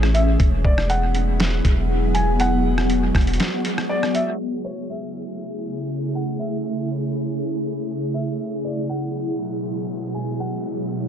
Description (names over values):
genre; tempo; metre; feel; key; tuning
hip hop, atmospheric cloud-rap; 120 BPM; 4/4; half-time; A major; A4 = 440 Hz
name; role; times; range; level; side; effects
ethereal airy pad; sustained chords; 0.0-11.1 s; B2 to G#4; -24 LUFS; equal; ensemble chorus, built-in reverb, sidechain pumping
long sustained 808-style bass; bass; 0.0-3.4 s; E1 to A1; -20 LUFS; equal; none
boom bap sampler-style drum kit; drums; 0.0-4.3 s; hi-hat, kick drum, rim click, snare drum; -22 LUFS; equal; dub echo
wind-like tuned noise texture; texture; 0.0-11.1 s; G#3 to E5; -35 LUFS; right 2 dB; built-in reverb
felt-muted upright piano; melody; 0.1-10.9 s; C#5 to G#5; -28 LUFS; equal; low-pass filter, dub echo
riser; sound effects; 9.1-11.1 s; none; -47 LUFS; right 1 dB; none
room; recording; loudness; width
light reverb; echo-heavy mix, low-pass filter; -20 LUFS; side -9 dB against mid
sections
0.0-4.4 A section; 4.4-11.1 B section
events
break 3.4-4.4; filter sweep 4.4-11.1; riser 9.1-11.1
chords
0.4 Eadd9; 4.4 Amaj7; 8.4 Eadd9